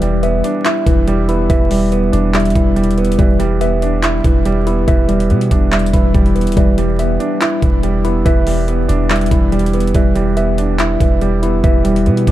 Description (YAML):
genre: hip hop, trap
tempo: 142 BPM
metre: 4/4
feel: half-time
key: E minor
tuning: A4 = 441 Hz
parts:
  - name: dark grand piano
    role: accompaniment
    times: 0.0-12.3 s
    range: E3 to E4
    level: -17 LUFS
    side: right 6 dB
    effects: low-pass filter
  - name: mellow tine electric piano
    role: arpeggios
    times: 0.0-12.3 s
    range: G3 to E5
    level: -18 LUFS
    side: left 4 dB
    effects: medium stereo tremolo, low-pass filter, digital delay
  - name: long sustained 808-style bass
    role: bass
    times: 0.0-12.3 s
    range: D1 to B2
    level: -17 LUFS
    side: equal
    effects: none
  - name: trap drum kit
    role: drums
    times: 0.0-12.3 s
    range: handclaps, hi-hat, kick drum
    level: -16 LUFS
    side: equal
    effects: none
room: little or no reverb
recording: dark, warm production, vinyl crackle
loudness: -12 LUFS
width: side -14 dB against mid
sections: 0.0-12.3 A section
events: none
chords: 0.0 Em7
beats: 0.23 0.65 1.07 | 1.50 1.92 2.34 2.77 | 3.19 3.61 4.03 4.46 | 4.88 5.30 5.72 6.14 | 6.57 6.99 7.41 7.84 | 8.26 8.68 9.10 9.53 | 9.95 10.37 10.79 11.22 | 11.64 12.06